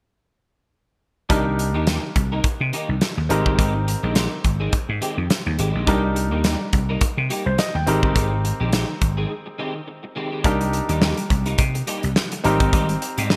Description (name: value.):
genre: early-eighties boogie funk.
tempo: 105 BPM.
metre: 4/4.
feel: swing 56% on 16ths.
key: C minor.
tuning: A4 = 440 Hz.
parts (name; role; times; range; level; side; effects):
warm grand piano; accompaniment; 1.3-13.4 s; C4 to G5; -28 LUFS; equal; none.
electric guitar at the edge of break-up; riff; 1.3-13.4 s; Eb3 to Bb4; -30 LUFS; equal; ensemble chorus.
vintage slap bass; bass; 1.3-13.4 s; G1 to C3; -25 LUFS; equal; none.
modern studio drum kit; drums; 1.3-13.4 s; hi-hat, kick drum, snare drum; -24 LUFS; equal; none.
room: light reverb, small room ambience.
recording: bright 1980s-style digital production.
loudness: -21 LUFS.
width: mono.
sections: 1.3-10.4 A section; 10.4-13.4 B section.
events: break 9.3-10.4.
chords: 1.3 Cm7; 3.3 Abmaj7; 5.9 Cm7; 7.9 Abmaj7; 10.4 Cm7; 12.4 Abmaj7.